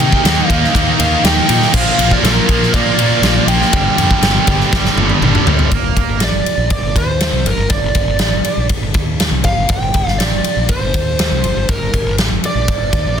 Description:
hard rock; 121 BPM; 4/4; straight; G minor; A4 = 440 Hz
smooth overdriven lead guitar; melody; 0.0-13.2 s; Bb4 to G5; -19 LUFS; right 2 dB
overdriven tonewheel organ; sustained chords; 0.0-5.7 s; G3 to G5; -28 LUFS; equal
distorted electric guitar; riff; 0.0-6.2 s; G2 to Eb4; -20 LUFS; equal; distortion
scooped high-gain guitar; riff; 0.0-6.2 s; G2 to Eb4; -18 LUFS; right 13 dB; distortion
sludgy distorted guitar; riff; 0.0-6.2 s; G2 to Eb4; -20 LUFS; left 12 dB; overdrive
fuzz fingered electric bass; bass; 0.0-13.2 s; G1 to C3; -18 LUFS; equal; overdrive
big rock drum kit; drums; 0.0-13.0 s; crash cymbal, kick drum, ride cymbal, snare drum, toms; -16 LUFS; equal
light reverb; dense, heavily limited modern master; -12 LUFS; side -8 dB against mid
0.0-5.7 A section; 5.7-13.2 B section
drum fill 4.7-5.7
0.0 Eb; 1.7 Bb; 3.7 G5; 5.7 Gm
0.25 0.75 1.25 | 1.75 2.24 2.74 3.24 | 3.74 4.23 4.73 5.23 | 5.73 6.22 6.72 7.22 | 7.71 8.21 8.71 9.21 | 9.70 10.20 10.69 11.19 | 11.69 12.18 12.68 13.17

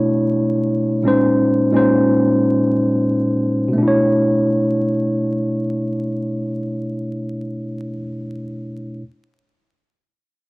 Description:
hip hop; free time; A4 = 435 Hz
mellow tine electric piano; accompaniment; 0.0-9.0 s; A#2 to C#5; -16 LUFS; equal; fast stereo tremolo, high-pass filter, low-pass filter, cassette tape
light reverb; home recording on cassette, vinyl crackle; -15 LUFS; side -25 dB against mid
0.0-3.8 A section; 3.8-6.5 B section
0.0 Bm11; 1.1 A#m11; 3.8 Bm11
free time

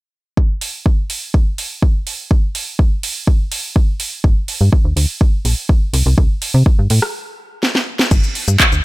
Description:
filtered disco house; 124 BPM; 4/4; straight; G minor; A4 = 440 Hz
electronic kick drum; drums; 0.4-8.7 s; -13 LUFS; equal
house drum kit; drums; 0.6-8.8 s; crash cymbal, handclaps, hi-hat, rim click, shaker, snare drum; -18 LUFS; right 1 dB; sidechain pumping on hats, sidechain pumping on cymbals, sidechain pumping on perc
slap-like FM bass; bass; 4.2-8.8 s; G1 to C3; -13 LUFS; equal; sidechain pumping, low-pass filter
little or no reverb; -14 LUFS; side -19 dB against mid
0.4-8.1 A section
stop 7.1-8.1; drum fill 7.6-8.1
| 0.37 0.86 1.34 1.82 | 2.31 2.79 3.28 3.76 | 4.24 4.73 5.21 5.70 | 6.18 6.66 7.15 7.63 | 8.12 8.60

